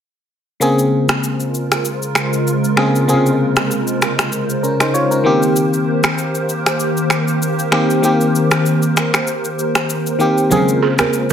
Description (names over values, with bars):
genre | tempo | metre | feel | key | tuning
afrobeats | 97 BPM | 4/4 | swing 55% on 16ths | Bb dorian | A4 = 443 Hz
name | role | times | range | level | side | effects
FM electric piano | accompaniment | 0.6-11.3 s | C3 to Db5 | -17 LUFS | left 1 dB | chorus
hollow soft pad | sustained chords | 0.6-11.3 s | Db3 to C5 | -19 LUFS | equal | ensemble chorus
electronic shaker, finger snaps and rim click | drums | 0.6-11.3 s | none | -18 LUFS | equal | none
congas | percussion | 10.5-11.3 s | none | -21 LUFS | right 7 dB | none
balafon | riff | 10.8-11.3 s | Ab4 to Bb4 | -18 LUFS | right 9 dB | none
room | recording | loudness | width
light reverb, small room reverb | none | -14 LUFS | side -8 dB against mid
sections
0.6-11.3 A section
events
break 9.3-10.5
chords
0.6 Bbm9; 5.3 Cm7; 10.5 Bbm9